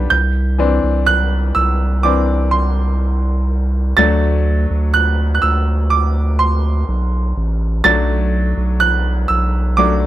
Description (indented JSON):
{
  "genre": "pop ballad",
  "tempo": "62 BPM",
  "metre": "4/4",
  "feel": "straight",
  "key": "unclear",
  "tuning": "A4 = 440 Hz",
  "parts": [
    { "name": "bright grand piano", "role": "accompaniment", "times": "0.0-10.1 s", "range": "G2 to A6", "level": "-17 LUFS", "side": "right 1 dB", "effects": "none" },
    { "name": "saturated sub bass", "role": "bass", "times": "0.0-10.1 s", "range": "A1 to D2", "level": "-16 LUFS", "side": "equal", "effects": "none" }
  ],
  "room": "small room ambience",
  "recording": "dry, close 1970s-style studio recording",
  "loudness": "-13 LUFS",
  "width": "side -13 dB against mid",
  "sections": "0.1-10.1 A section",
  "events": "grand piano solo 0.1-10.1",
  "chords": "0.1 Cadd9; 4.0 D; 7.8 Bm7",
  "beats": "| 0.11 1.07 2.04 3.01 | 3.98 4.95 5.91 6.88 | 7.85 8.82 9.78"
}